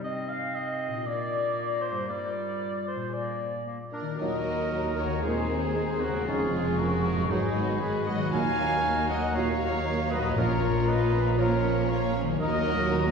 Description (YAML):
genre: cinematic, heroic adventure film score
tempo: 117 BPM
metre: 4/4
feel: straight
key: Eb minor from 4.2 s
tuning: A4 = 440 Hz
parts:
  - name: bright clarinet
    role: second line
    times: 0.0-13.1 s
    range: G3 to Ab4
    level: -35 LUFS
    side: left 3 dB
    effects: none
  - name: small flute group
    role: second line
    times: 0.0-13.1 s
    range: C5 to Db6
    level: -36 LUFS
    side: left 4 dB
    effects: none
  - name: warm oboe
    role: second line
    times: 0.0-13.1 s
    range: Eb4 to F5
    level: -35 LUFS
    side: equal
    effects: none
  - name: concert harp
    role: arpeggios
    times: 0.0-13.1 s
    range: G2 to Bb5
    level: -36 LUFS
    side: left 5 dB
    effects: none
  - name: warm symphonic violin section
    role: melody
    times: 3.9-13.1 s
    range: Eb4 to F5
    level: -38 LUFS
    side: left 4 dB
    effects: none
  - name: clear trumpet section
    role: stabs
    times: 3.9-13.1 s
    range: Ab4 to Ab5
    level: -32 LUFS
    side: right 1 dB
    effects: none
  - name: rich symphonic violin section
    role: second line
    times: 4.2-13.1 s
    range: Ab3 to Gb4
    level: -37 LUFS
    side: left 3 dB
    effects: none
  - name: dark symphonic viola section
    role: accompaniment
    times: 4.2-13.1 s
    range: Eb3 to Db4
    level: -34 LUFS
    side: right 2 dB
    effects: none
  - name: warm French horn section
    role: sustained chords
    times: 4.2-13.1 s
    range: Bb3 to F4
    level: -37 LUFS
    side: left 3 dB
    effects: none
  - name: warm trombone section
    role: sustained chords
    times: 4.2-13.1 s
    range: Ab2 to Ab3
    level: -36 LUFS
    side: right 4 dB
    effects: none
  - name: clear symphonic cello section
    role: bass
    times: 4.2-13.1 s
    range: Eb2 to Bb2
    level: -32 LUFS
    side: right 3 dB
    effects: none
  - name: rich symphonic double bass section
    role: bass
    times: 4.2-13.1 s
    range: F1 to Eb2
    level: -32 LUFS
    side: right 2 dB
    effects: none
  - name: timpani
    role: percussion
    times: 8.3-11.1 s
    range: Bb2 to Eb3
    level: -35 LUFS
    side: right 2 dB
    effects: none
room: wet scoring stage reverb, RT60 1.9 s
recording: heard from further back in the room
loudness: -25 LUFS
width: side -5 dB against mid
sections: 0.0-4.2 A section; 4.2-13.1 B section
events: none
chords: 0.0 Cm; 1.1 Bb; 3.1 Bb7; 4.2 Ebm; 5.2 Abadd9/Eb; 6.3 Db/F; 7.3 Abm7; 8.3 Ebm; 10.4 Bbm; 12.4 Ebm